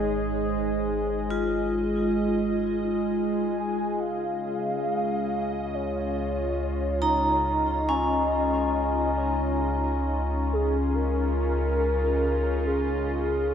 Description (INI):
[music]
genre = ambient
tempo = 69 BPM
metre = 4/4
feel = straight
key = unclear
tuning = A4 = 440 Hz
[part]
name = warm velvety synth lead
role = melody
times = 0.0-13.5 s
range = Ab4 to Ab5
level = -30 LUFS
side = equal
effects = chorus, diffuse ambient delay
[part]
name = evolving wavetable pad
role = sustained chords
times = 0.0-13.5 s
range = Db3 to Eb5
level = -30 LUFS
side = equal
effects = chorus, built-in reverb
[part]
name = vibraphone with medium hard mallets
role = arpeggios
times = 0.0-13.5 s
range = Db4 to Bb5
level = -28 LUFS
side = left 2 dB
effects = diffuse ambient delay
[part]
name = deep rumbling drone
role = bass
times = 0.0-13.5 s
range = Ab1 to Db2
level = -30 LUFS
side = equal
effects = built-in reverb
[part]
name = analog drone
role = drone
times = 0.0-13.5 s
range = Ab3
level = -34 LUFS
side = right 2 dB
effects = chorus
[sound]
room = wet cathedral reverb, RT60 6.8 s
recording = none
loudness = -24 LUFS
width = side -8 dB against mid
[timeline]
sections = 0.0-13.5 A section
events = fade-in on soft synth lead 0.0-13.5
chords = 0.0 Ab; 4.0 Dbadd9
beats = | 0.43 1.30 2.19 3.08 | 3.98 4.86 5.74 6.60 | 7.47 8.34 9.20 10.07 | 10.93 11.80 12.67